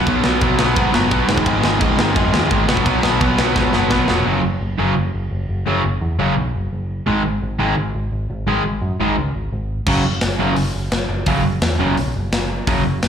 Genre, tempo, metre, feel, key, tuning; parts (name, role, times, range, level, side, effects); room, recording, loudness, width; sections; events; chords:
punk rock; 171 BPM; 4/4; straight; A4 = 440 Hz
cranked stack guitar; riff; 0.0-12.8 s; F#2 to B3; -17 LUFS; equal; overdrive, slapback echo
picked electric bass; bass; 0.0-13.1 s; E#1 to G#2; -22 LUFS; equal
tight metal drum kit; drums; 0.1-4.2, 9.9-13.1 s; crash cymbal, hi-hat, kick drum, ride cymbal, snare drum; -21 LUFS; left 1 dB
little or no reverb; live gig heard through the venue's PA, club reverb; -16 LUFS; side -8 dB against mid
0.0-4.3 A section; 4.3-13.1 B section
drum fill 3.6-4.3; half time 4.3-13.1
0.0 B5; 1.3 G#5; 2.7 B5; 4.3 F#5; 7.1 G#5; 9.9 F#5